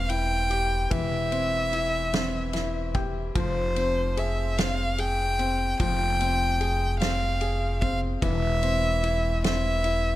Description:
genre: six-eight pop ballad.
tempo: 49 BPM (dotted quarters).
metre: 6/8.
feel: straight.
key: F harmonic minor.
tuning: A4 = 440 Hz.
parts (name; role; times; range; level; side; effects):
rich violin; melody; 0.0-10.2 s; C5 to G5; -27 LUFS; equal; none.
clear grand piano; accompaniment; 0.0-10.2 s; E3 to G5; -31 LUFS; left 3 dB; none.
upright bass; bass; 0.0-10.2 s; E1 to F1; -28 LUFS; equal; none.
loose indie drum kit; drums; 0.1-10.0 s; kick drum, ride cymbal, snare drum; -32 LUFS; equal; none.
room: light reverb.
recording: none.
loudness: -23 LUFS.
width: side -15 dB against mid.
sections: 0.0-10.2 A section.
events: grand piano fill 2.1-3.4.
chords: 0.0 C/E; 3.4 Fmadd9; 8.2 C/E.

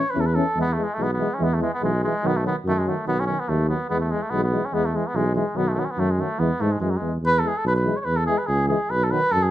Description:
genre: balkan folk, Balkan brass band.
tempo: 144 BPM.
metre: 2/4.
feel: swing 56% on 16ths.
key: E major.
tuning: A4 = 440 Hz.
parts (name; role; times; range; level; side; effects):
cornet with cup mute; melody; 0.0-9.5 s; F#3 to C#5; -24 LUFS; right 1 dB; none.
clear euphonium; accompaniment; 0.0-9.2 s; F#3 to C#4; -28 LUFS; left 5 dB; none.
warm trombone; accompaniment; 0.1-9.2 s; D#3 to E3; -30 LUFS; right 6 dB; none.
mellow tuba; bass; 0.2-9.5 s; B1 to G#2; -24 LUFS; equal; none.
room: moderate studio reverb, RT60 0.6 s.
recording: dark, warm production.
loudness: -20 LUFS.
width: side -13 dB against mid.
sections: 0.6-7.2 A section; 7.2-9.5 A section.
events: none.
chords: 0.0 A; 0.6 E; 2.2 B; 3.9 E; 5.6 B; 6.4 E; 8.9 B.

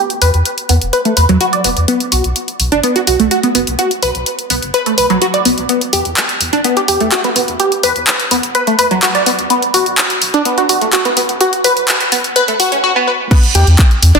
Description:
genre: melodic techno.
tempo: 126 BPM.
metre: 4/4.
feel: straight.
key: B minor.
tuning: A4 = 441 Hz.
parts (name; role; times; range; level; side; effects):
tight sequenced synth; arpeggios; 0.0-14.2 s; F#3 to G5; -13 LUFS; equal; chorus, sidechain pumping, dub echo.
house drum kit; drums; 0.1-14.2 s; crash cymbal, handclaps, hi-hat; -15 LUFS; equal; none.
round analog bass; bass; 0.2-14.2 s; E1 to E2; -14 LUFS; equal; sidechain pumping.
electronic kick drum; drums; 13.3-13.9 s; none; -8 LUFS; equal; none.
room: wet lush hall reverb, RT60 1.8 s, digital ambience.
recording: dense, heavily limited modern master, high-pass filter.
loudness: -11 LUFS.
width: side -5 dB against mid.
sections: 0.0-13.3 A section.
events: build-up 0.0-13.3.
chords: 0.0 E5; 1.9 B5; 5.7 E5; 9.5 B5; 13.3 Em.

